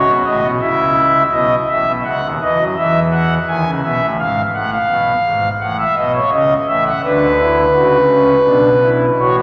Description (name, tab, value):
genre	classical, baroque-style 3-part fugue for pipe organ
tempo	84 BPM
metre	4/4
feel	straight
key	F# minor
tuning	A4 = 441 Hz
part	pipe organ, foundations	solo	0.0-9.4 s	G#1 to G#5	-14 LUFS	equal	none
room	wet cathedral reverb, RT60 4.1 s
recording	none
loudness	-15 LUFS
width	mono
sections	0.0-1.3 A section; 1.3-9.4 B section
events	none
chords	0.0 B7; 2.8 E; 4.2 G#m6; 5.6 F#m/A; 7.0 Bm7